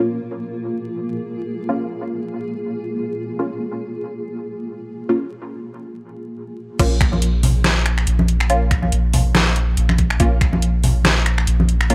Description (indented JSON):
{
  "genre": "deep dubstep",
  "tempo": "141 BPM",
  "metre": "4/4",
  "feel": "swing 56% on 16ths, half-time",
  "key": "Bb minor",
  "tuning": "A4 = 440 Hz",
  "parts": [
    { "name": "granular cloud pad", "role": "sustained chords", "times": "0.0-6.8 s", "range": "Bb3 to Ab4", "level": "-30 LUFS", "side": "equal", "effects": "built-in reverb" },
    { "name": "filtered dub chord stab", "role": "stabs", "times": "0.0-11.9 s", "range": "Bb3 to F4", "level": "-26 LUFS", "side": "equal", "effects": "phaser, analog chorus, cassette tape, dub echo" },
    { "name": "soft dub sub bass", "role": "bass", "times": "6.8-11.9 s", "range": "Bb1", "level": "-20 LUFS", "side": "equal", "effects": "none" },
    { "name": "dubstep drum kit", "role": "drums", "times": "6.8-11.9 s", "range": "crash cymbal, finger snaps, hi-hat, snare drum", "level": "-23 LUFS", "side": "equal", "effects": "none" },
    { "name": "electronic kick drum", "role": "drums", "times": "6.8-10.5 s", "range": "none", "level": "-20 LUFS", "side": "equal", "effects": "none" },
    { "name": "congas", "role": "percussion", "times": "7.1-11.7 s", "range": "none", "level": "-25 LUFS", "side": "equal", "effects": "none" }
  ],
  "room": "light reverb, digital ambience",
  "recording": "vinyl crackle",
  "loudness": "-20 LUFS",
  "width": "mono",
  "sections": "0.0-6.8 A section; 6.8-11.9 B section",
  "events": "break 5.9-6.8; drop 6.8-11.9",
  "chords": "0.0 Bb5; 6.8 N.C."
}